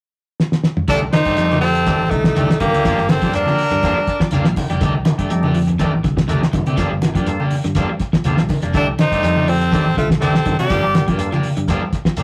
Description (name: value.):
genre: afrobeat.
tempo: 122 BPM.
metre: 4/4.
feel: swing 53% on 16ths.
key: C dorian.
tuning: A4 = 436 Hz.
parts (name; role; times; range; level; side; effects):
cloth-damped thuddy drum kit; drums; 0.4-12.2 s; hi-hat, kick drum, snare drum, toms; -22 LUFS; equal; none.
raspy tenor saxophone; melody; 0.9-4.3, 8.8-11.0 s; A3 to G4; -21 LUFS; equal; none.
bright trumpet; second line; 0.9-4.3, 8.8-11.0 s; Eb4 to D5; -27 LUFS; equal; none.
warm baritone saxophone; second line; 0.9-4.3, 8.8-11.0 s; A2 to G3; -33 LUFS; equal; none.
overdriven tonewheel organ; accompaniment; 0.9-12.2 s; A3 to G5; -30 LUFS; equal; none.
electric guitar at the edge of break-up; arpeggios; 0.9-12.2 s; D3 to G3; -28 LUFS; equal; none.
electric guitar at the edge of break-up; stabs; 0.9-12.2 s; Eb3 to G4; -29 LUFS; equal; none.
fingered electric bass; bass; 0.9-12.2 s; F1 to C3; -24 LUFS; equal; none.
congas; percussion; 0.9-12.2 s; none; -26 LUFS; equal; none.
shekere; percussion; 0.9-12.2 s; none; -33 LUFS; equal; none.
room: moderate studio reverb, RT60 0.6 s.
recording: rough rehearsal-room recording, warm saturation.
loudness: -17 LUFS.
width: mono.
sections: 0.9-12.2 A section.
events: drum fill 0.4-0.9; tonewheel organ fill 3.8-4.8.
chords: 0.0 N.C.; 0.9 Cm69; 2.8 Gm7; 4.8 Cm69; 6.8 Gm7; 8.7 Cm69; 10.7 Gm7.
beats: 0.39 | 0.88 1.38 1.87 2.36 | 2.85 3.34 3.83 4.32 | 4.81 5.30 5.79 6.28 | 6.78 7.27 7.76 8.25 | 8.74 9.23 9.72 10.21 | 10.70 11.19 11.68 12.18.